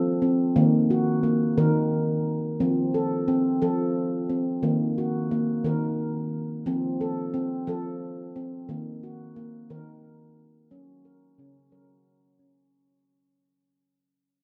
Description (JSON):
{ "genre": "world meditative, meditative tuned percussion", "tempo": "59 BPM (dotted quarters)", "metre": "6/8", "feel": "straight", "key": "unclear", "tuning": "A4 = 440 Hz", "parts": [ { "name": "handpan", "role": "solo", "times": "0.0-12.7 s", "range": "Db3 to Bb4", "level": "-26 LUFS", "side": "equal", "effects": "none" } ], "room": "light reverb, small room ambience", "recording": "rough home demo mix", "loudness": "-25 LUFS", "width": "mono", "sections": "0.0-12.7 A section", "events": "fade-out 0.0-12.7", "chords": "0.0 F; 0.6 Ebm; 2.6 F; 4.6 Ebm; 6.7 F; 8.7 Ebm; 10.7 Gb", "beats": "| 0.57 1.58 | 2.60 3.62 | 4.63 5.65 | 6.66 7.68 | 8.69 9.70 | 10.71 11.73" }